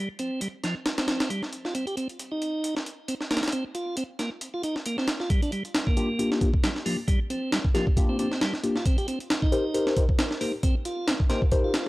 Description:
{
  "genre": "breakbeat, breaks",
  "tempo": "135 BPM",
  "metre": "4/4",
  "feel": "swing 55% on 16ths",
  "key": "G minor",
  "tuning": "A4 = 440 Hz",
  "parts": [
    { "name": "tonewheel organ", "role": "riff", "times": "0.0-11.9 s", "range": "F3 to G4", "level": "-30 LUFS", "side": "right 1 dB", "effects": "overdrive, stopped rotary speaker, vintage 12-bit sampler grit, low-pass filter, tape echo" },
    { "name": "breakbeat sampler-style drum kit", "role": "drums", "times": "0.2-11.9 s", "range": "hi-hat, kick drum, snare drum", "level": "-25 LUFS", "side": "equal", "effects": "high-pass filter on snare, small room ambience, high-pass filter on hats, high-pass filter on kick" },
    { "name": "mellow tine electric piano", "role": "stabs", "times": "6.0-11.9 s", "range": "Bb3 to C5", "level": "-28 LUFS", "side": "left 2 dB", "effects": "phaser, low-pass filter, tape echo" }
  ],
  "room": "digital ambience",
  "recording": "dry, gritty hardware recording, cassette tape",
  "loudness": "-24 LUFS",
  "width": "side -19 dB against mid",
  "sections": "0.0-5.3 A section; 5.3-11.9 B section",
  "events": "build-up 5.3-11.9; filter sweep on tine electric piano 5.3-11.9",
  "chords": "0.0 G7(no3); 1.7 Cm7; 5.3 Gm7; 8.9 Cm7",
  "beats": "0.41 0.86 1.30 | 1.75 2.19 2.64 3.08 | 3.53 3.97 4.42 4.86 | 5.30 5.75 6.19 6.64 | 7.08 7.53 7.97 8.41 | 8.86 9.30 9.75 10.19 | 10.64 11.08 11.53"
}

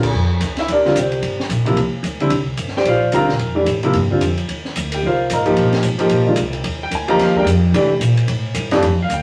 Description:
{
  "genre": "modal jazz",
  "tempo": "221 BPM",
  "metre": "4/4",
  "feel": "swing 60% on 8ths",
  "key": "unclear",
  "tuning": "A4 = 440 Hz",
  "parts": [
    { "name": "warm baby grand piano", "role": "accompaniment", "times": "0.0-9.2 s", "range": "F2 to Bb5", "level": "-19 LUFS", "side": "equal", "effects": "none" },
    { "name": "upright bass", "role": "bass", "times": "0.0-9.2 s", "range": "G1 to C3", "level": "-22 LUFS", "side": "equal", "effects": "none" },
    { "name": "open jazz drum kit", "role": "drums", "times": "0.0-9.2 s", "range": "crash cymbal, hi-hat, kick drum, ride cymbal, snare drum", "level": "-28 LUFS", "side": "equal", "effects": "none" }
  ],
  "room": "wet studio reverb, RT60 0.6 s",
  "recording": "vinyl crackle",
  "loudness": "-17 LUFS",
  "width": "mono",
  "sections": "0.1-8.8 A section",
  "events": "none",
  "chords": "0.1 C9sus4; 4.5 Bb9sus4; 7.7 C9",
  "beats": "| 0.15 0.42 0.69 0.96 | 1.23 1.51 1.78 2.05 | 2.32 2.59 2.86 3.13 | 3.41 3.68 3.95 4.22 | 4.49 4.76 5.03 5.31 | 5.58 5.85 6.12 6.39 | 6.66 6.93 7.20 7.47 | 7.75 8.02 8.29 8.56 | 8.83 9.10"
}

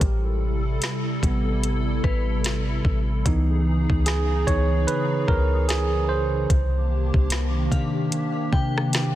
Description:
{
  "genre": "contemporary R&B",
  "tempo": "74 BPM",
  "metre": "4/4",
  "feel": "swing 58% on 16ths",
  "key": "unclear",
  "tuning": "A4 = 441 Hz",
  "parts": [
    { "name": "tine electric piano", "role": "accompaniment", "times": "0.0-9.2 s", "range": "C3 to Db5", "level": "-26 LUFS", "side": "right 3 dB", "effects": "none" },
    { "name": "hollow soft pad", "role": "sustained chords", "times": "0.0-9.2 s", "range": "C3 to A4", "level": "-29 LUFS", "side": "left 1 dB", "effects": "ensemble chorus" },
    { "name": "clean 808-style bass", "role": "bass", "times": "0.0-9.2 s", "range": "A1 to C3", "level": "-24 LUFS", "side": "equal", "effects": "none" },
    { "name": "smooth R&B drum kit", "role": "drums", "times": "0.0-9.2 s", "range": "hi-hat, kick drum, rim click, snare drum", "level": "-24 LUFS", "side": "equal", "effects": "none" },
    { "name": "glassy synth bell", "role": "texture", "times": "2.0-9.2 s", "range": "B4 to G5", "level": "-34 LUFS", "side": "left 6 dB", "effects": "chorus, digital delay" }
  ],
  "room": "little or no reverb",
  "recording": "dense, heavily limited modern master",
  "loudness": "-20 LUFS",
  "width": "side -13 dB against mid",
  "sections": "0.0-9.2 A section",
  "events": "tine electric piano solo 0.0-9.2",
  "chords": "0.0 Am9; 3.3 Dbm9; 6.5 Cm9",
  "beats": "| 0.01 0.82 1.63 2.44 | 3.25 4.07 4.88 5.69 | 6.50 7.31 8.12 8.93"
}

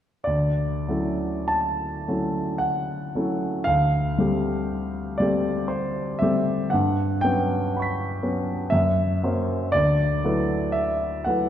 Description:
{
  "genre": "classical, impressionist solo piano",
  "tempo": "46-61 BPM",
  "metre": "3/4",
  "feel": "rubato",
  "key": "D major",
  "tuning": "A4 = 439 Hz",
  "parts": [
    { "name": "warm grand piano", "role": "solo", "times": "0.2-11.5 s", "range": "D2 to B6", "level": "-21 LUFS", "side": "equal", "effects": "none" }
  ],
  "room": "moderate concert hall reverb, RT60 1.7 s",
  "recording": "lossy compression artefacts",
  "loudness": "-22 LUFS",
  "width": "side -10 dB against mid",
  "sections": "0.3-11.5 A section",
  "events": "none",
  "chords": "0.3 Dmaj9; 3.7 Fadd9/D; 6.7 Gmaj7#11; 8.7 F#7#11; 9.7 D69",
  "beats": "| 0.26 1.51 2.62 | 3.67 4.70 5.72 | 6.73 7.74 8.72 | 9.74 10.76"
}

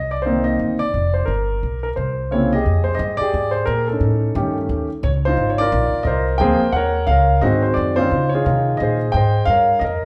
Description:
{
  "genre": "jazz piano trio",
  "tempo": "176 BPM",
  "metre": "4/4",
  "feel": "swing 62% on 8ths",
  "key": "C minor",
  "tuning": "A4 = 440 Hz",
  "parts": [
    { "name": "warm grand piano", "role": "melody", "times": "0.0-10.1 s", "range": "Db3 to G5", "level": "-20 LUFS", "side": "equal", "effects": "none" },
    { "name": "upright bass", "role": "bass", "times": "0.0-10.0 s", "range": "F1 to Db3", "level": "-23 LUFS", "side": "equal", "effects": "none" }
  ],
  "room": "wet large studio reverb, RT60 1.3 s",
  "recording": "band playing live in one room",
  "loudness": "-18 LUFS",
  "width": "mono",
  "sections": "0.0-2.6 A section; 2.6-10.1 B section",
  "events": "none",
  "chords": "0.0 Cm9; 1.3 Gm; 2.0 C7b9; 2.6 Fm11; 4.0 A7#11; 5.4 Ab69; 6.7 Ebm7; 7.4 Ab7; 8.1 Dbmaj9; 9.5 Gm7b5",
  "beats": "0.25 0.60 0.94 | 1.28 1.62 1.97 2.31 | 2.65 2.99 3.33 3.67 | 4.01 4.36 4.70 5.04 | 5.38 5.72 6.06 6.40 | 6.74 7.08 7.42 7.76 | 8.10 8.44 8.79 9.12 | 9.47 9.81"
}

